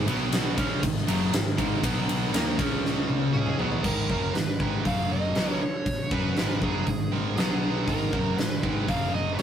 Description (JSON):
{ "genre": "hard rock", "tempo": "119 BPM", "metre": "4/4", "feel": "straight", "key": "G# minor", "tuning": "A4 = 439 Hz", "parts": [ { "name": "overdriven electric guitar", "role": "riff", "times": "0.0-3.8 s", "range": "F#2 to D#4", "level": "-33 LUFS", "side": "right 1 dB", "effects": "none" }, { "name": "sludgy distorted guitar", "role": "riff", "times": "0.0-9.4 s", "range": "F#2 to F#4", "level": "-31 LUFS", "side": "left 3 dB", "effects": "overdrive" }, { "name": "tight distorted guitar", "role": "riff", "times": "0.0-9.4 s", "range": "F#2 to F#4", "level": "-30 LUFS", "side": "right 6 dB", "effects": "distortion" }, { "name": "modern bright picked electric bass", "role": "bass", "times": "0.0-9.4 s", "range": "F#1 to F#2", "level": "-33 LUFS", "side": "equal", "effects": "none" }, { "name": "huge arena drum kit", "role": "drums", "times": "0.1-9.4 s", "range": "crash cymbal, hi-hat, kick drum, ride cymbal, snare drum, toms", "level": "-27 LUFS", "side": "equal", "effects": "none" }, { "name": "bluesy overdriven lead guitar", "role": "melody", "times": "3.3-9.4 s", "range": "G#4 to E#5", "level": "-32 LUFS", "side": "right 2 dB", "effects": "distortion" } ], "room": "light reverb", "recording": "rough rehearsal-room recording, warm saturation", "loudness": "-23 LUFS", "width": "side -9 dB against mid", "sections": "0.0-3.8 A section; 3.8-9.4 B section", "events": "drum fill 2.8-3.8", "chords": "0.1 B5; 0.6 G#5; 1.8 B5; 2.3 D#5; 2.6 C#5; 3.6 G#m; 4.8 F#5; 5.4 G#m; 7.4 B5; 7.9 G#m; 8.9 F#5" }